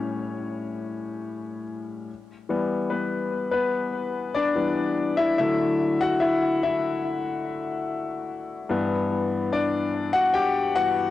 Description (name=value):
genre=pop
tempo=73 BPM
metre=4/4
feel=straight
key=D major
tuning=A4 = 440 Hz
part: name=clear concert grand piano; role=solo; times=0.0-11.1 s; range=G2 to G5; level=-23 LUFS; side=left 3 dB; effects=cassette tape, analog delay
room=moderate spring reverb, RT60 1.5 s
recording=home recording on cassette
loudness=-23 LUFS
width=side -13 dB against mid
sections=0.0-11.1 A section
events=grand piano solo 0.0-11.1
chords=0.0 A7; 2.1 Em; 5.4 D; 8.7 G6